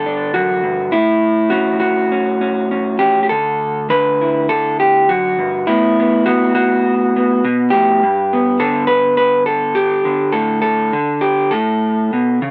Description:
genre	folk, solo fingerstyle acoustic guitar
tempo	103 BPM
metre	4/4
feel	rubato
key	unclear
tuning	A4 = 439 Hz
part	electric guitar through a small old amp	solo	0.0-12.5 s	D2 to B4	-16 LUFS	equal	none
room	light reverb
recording	close, detailed microphones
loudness	-15 LUFS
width	mono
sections	0.0-12.5 A section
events	none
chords	0.0 Gsus2; 0.9 A; 3.3 Dadd9; 5.7 Asus2; 8.0 G; 10.3 Asus4; 11.5 N.C.

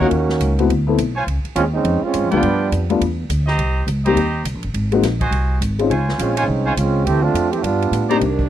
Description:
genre	jazz, big band swing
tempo	207 BPM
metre	4/4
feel	swing 61% on 8ths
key	unclear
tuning	A4 = 438 Hz
part	clear trombone section	second line	0.0-2.9, 6.2-8.1 s	Eb3 to G4	-19 LUFS	right 4 dB	none
part	dark baby grand piano	accompaniment	0.0-5.9, 8.1-8.2 s	G3 to A4	-18 LUFS	left 6 dB	none
part	clear trumpet section	stabs	0.0-8.2 s	Eb4 to Bb5	-22 LUFS	right 2 dB	none
part	upright bass	bass	0.0-8.5 s	G1 to A2	-20 LUFS	equal	none
part	swinging big-band drum kit	drums	0.0-8.4 s	hi-hat, kick drum, ride cymbal, snare drum	-30 LUFS	right 1 dB	none
part	mellow saxophone section	sustained chords	8.2-8.5 s	C3 to D4	-22 LUFS	right 4 dB	none
room	small room ambience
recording	dry, close 1970s-style studio recording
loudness	-16 LUFS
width	side -11 dB against mid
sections	0.0-8.2 A section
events	trombone section solo 0.0-8.2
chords	0.1 Ebm7; 0.7 Dsus2; 1.3 Dbmaj7; 2.4 G7; 3.6 Cm7; 4.7 Ab7; 5.9 Dbmaj7; 7.1 Dm7; 7.6 G7

